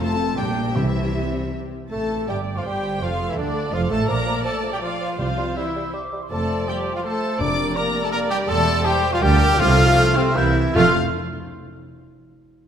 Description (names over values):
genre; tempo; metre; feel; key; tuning
quick classical-period movement for symphony orchestra; 146-170 BPM; 3/4; rubato; F major; A4 = 440 Hz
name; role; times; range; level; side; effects
warm chamber violin section; melody; 0.0-11.0 s; C5 to D6; -28 LUFS; left 4 dB; none
dark cor anglais; second line; 0.0-10.9 s; C4 to D5; -30 LUFS; right 2 dB; none
silver concert flute; second line; 0.0-11.0 s; D5 to G6; -29 LUFS; left 1 dB; none
warm chamber violin section; second line; 0.0-11.0 s; C4 to D5; -30 LUFS; left 3 dB; none
warm chamber viola section; accompaniment; 0.0-11.0 s; F3 to D5; -30 LUFS; right 3 dB; none
mellow French horn section; sustained chords; 0.0-10.9 s; C3 to F4; -28 LUFS; left 3 dB; none
dark chamber cello section; bass; 0.0-11.0 s; D2 to D3; -26 LUFS; right 2 dB; none
dark chamber double bass section; bass; 0.0-11.0 s; E1 to D2; -26 LUFS; right 2 dB; none
timpani; percussion; 0.0-1.3, 5.2-10.9 s; F2 to C3; -29 LUFS; left 1 dB; none
mellow bassoon; accompaniment; 1.9-10.9 s; D3 to Bb3; -29 LUFS; right 1 dB; none
bright trumpet; stabs; 1.9-10.9 s; C4 to D5; -27 LUFS; right 2 dB; none
room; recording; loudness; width
moderate scoring stage reverb, RT60 1.9 s; faint mains hum; -18 LUFS; side -8 dB against mid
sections
0.0-1.9 A section; 1.9-10.8 B section; 10.8-11.9 C section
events
slowing down 7.9-10.8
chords
0.4 Gm/Bb; 0.8 C; 1.9 F; 3.0 Dm/F; 4.1 Bb; 5.2 C; 6.3 F; 7.4 Gm7/F; 8.5 C/E; 9.2 Bb/D; 9.6 F/C; 10.4 C7; 10.8 F